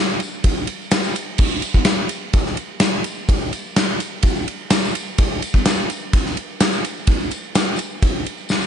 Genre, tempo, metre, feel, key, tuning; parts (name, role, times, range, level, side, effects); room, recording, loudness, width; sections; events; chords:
rock; 127 BPM; 4/4; straight
tambourine; percussion; 0.1-8.7 s; -35 LUFS; left 5 dB
gated 80s drum kit; drums; 0.2-8.6 s; crash cymbal, kick drum, ride cymbal, snare drum; -17 LUFS; equal
light reverb, small room reverb; nothing above 10.3 kHz; -17 LUFS; side -8 dB against mid
0.0-8.7 A section
drum fill 8.5